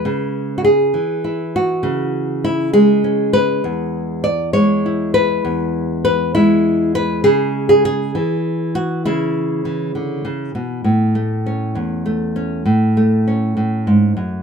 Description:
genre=folk, solo fingerstyle acoustic guitar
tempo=67 BPM (dotted quarters)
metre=6/8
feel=straight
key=unclear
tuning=A4 = 440 Hz
part: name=nylon-string guitar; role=solo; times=0.0-14.4 s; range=E2 to D5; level=-15 LUFS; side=equal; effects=none
room=light reverb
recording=minimal, uncompressed stereo recording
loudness=-15 LUFS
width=side -6 dB against mid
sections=0.0-10.9 A section; 10.9-14.4 B section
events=none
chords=0.0 C#m; 3.6 E; 7.2 C#m; 10.9 A

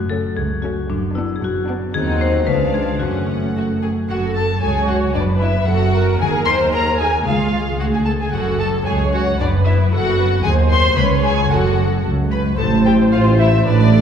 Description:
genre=cinematic, playful, whimsical film cue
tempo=113 BPM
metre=2/4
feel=straight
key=F# minor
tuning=A4 = 443 Hz
part: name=marimba with hard mallets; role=melody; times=0.0-3.5 s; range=D4 to B#4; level=-23 LUFS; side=left 4 dB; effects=none
part: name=concert harp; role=arpeggios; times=0.0-14.0 s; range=F#2 to E5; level=-23 LUFS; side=left 4 dB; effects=none
part: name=muted chamber cello section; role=bass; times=0.0-14.0 s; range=C#2 to A2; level=-22 LUFS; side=right 2 dB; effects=none
part: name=muted symphonic double bass section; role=bass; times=0.0-14.0 s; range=F#1 to D#2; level=-20 LUFS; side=right 2 dB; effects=none
part: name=muted chamber violin section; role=melody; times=0.1-14.0 s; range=D5 to B#5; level=-23 LUFS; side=left 3 dB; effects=none
part: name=muted studio violin section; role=second line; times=0.1-14.0 s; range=C#4 to B#4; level=-23 LUFS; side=equal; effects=none
part: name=muted chamber viola section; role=accompaniment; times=0.1-14.0 s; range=G#3 to C#5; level=-24 LUFS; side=right 2 dB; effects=none
part: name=warm tuba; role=bass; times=12.6-14.0 s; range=A1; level=-23 LUFS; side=right 1 dB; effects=none
room=wet scoring stage reverb, RT60 1.6 s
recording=heard from further back in the room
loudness=-15 LUFS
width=side -8 dB against mid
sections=0.0-4.1 A section; 4.1-12.6 A section; 12.6-14.0 B section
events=none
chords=0.0 F#m; 0.9 Bm/F#; 2.0 G#7/D#; 2.5 C#7b9; 3.0 F#m; 5.2 Bm/F#; 6.2 G#7/D#; 7.3 C#; 8.3 F#m; 9.4 Bm/F#; 10.4 G#7/D# (rootless); 11.0 C#7b9; 11.5 F#m; 12.6 Am

